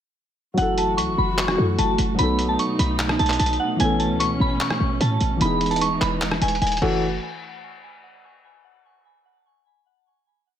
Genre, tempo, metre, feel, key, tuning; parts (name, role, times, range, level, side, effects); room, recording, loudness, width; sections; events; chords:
hip hop, trap; 149 BPM; 4/4; half-time; F# dorian; A4 = 440 Hz
dark concert grand piano; accompaniment; 0.5-7.0 s; E3 to A4; -26 LUFS; left 1 dB; low-pass filter
soft synth bell; melody; 0.6-7.0 s; F#5 to C#6; -25 LUFS; equal; chorus, phaser, low-pass filter, ping-pong delay
warm symphonic string section; sustained chords; 0.6-7.0 s; B2 to F#4; -27 LUFS; right 3 dB
short 808-style bass; bass; 0.6-7.2 s; D#1 to A2; -24 LUFS; equal
lo-fi sampler-style drum kit; drums; 0.6-6.9 s; crash cymbal, handclaps, hi-hat, rim click; -27 LUFS; equal
light reverb; -19 LUFS; side -9 dB against mid
0.6-7.0 hook; 7.0-8.6 final hit
0.6 F#m7; 2.2 B7; 3.8 Aadd9; 5.4 Emaj7; 6.8 F#m7; 7.0 N.C.